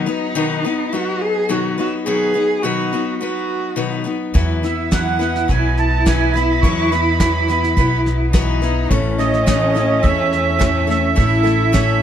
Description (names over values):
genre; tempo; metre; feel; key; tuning
acoustic folk duo or small band; 106 BPM; 4/4; straight; unclear; A4 = 442 Hz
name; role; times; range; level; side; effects
warm cello; second line; 0.0-12.0 s; C#4 to G#4; -21 LUFS; right 1 dB; none
picked steel-string acoustic guitar; accompaniment; 0.0-12.0 s; A2 to B4; -21 LUFS; left 6 dB; none
upright bass; bass; 4.3-12.0 s; A1 to E2; -20 LUFS; equal; none
soft brush drum kit; drums; 4.3-11.9 s; kick drum, snare drum; -19 LUFS; equal; none
accordion; melody; 4.6-12.0 s; D#5 to C#6; -20 LUFS; right 7 dB; light tremolo tuning, tape echo
room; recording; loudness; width
moderate studio reverb, RT60 0.6 s; dark, warm production; -15 LUFS; side -9 dB against mid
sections
0.0-12.0 A section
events
none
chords
0.0 B; 4.4 Esus2; 8.9 A